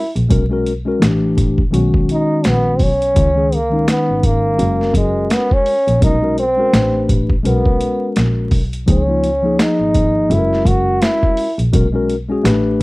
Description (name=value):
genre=hip hop, jazz-hop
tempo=84 BPM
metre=4/4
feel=swing 58% on 16ths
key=B major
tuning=A4 = 439 Hz
part: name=trombone with cup mute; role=melody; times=0.0-11.6 s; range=G#3 to F#4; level=-17 LUFS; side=right 1 dB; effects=none
part: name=mellow tine electric piano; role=accompaniment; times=0.0-12.8 s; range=D#3 to B4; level=-18 LUFS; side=left 2 dB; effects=none
part: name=warm double bass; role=bass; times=0.2-12.8 s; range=F#1 to C#2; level=-18 LUFS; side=equal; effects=none
part: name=boom bap sampler-style drum kit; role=drums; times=0.2-12.8 s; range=hi-hat, kick drum, snare drum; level=-17 LUFS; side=equal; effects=none
room=light reverb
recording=dry, close 1970s-style studio recording, vinyl crackle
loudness=-13 LUFS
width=side -22 dB against mid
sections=0.0-12.8 A section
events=none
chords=0.3 Bsus2; 1.0 A5; 1.7 G#m9/B; 3.2 C#sus2; 4.6 F#add9; 6.0 Bmaj9; 6.7 Am9; 7.4 G#m9/B; 8.9 C#69; 10.3 F#add9; 11.7 Bsus2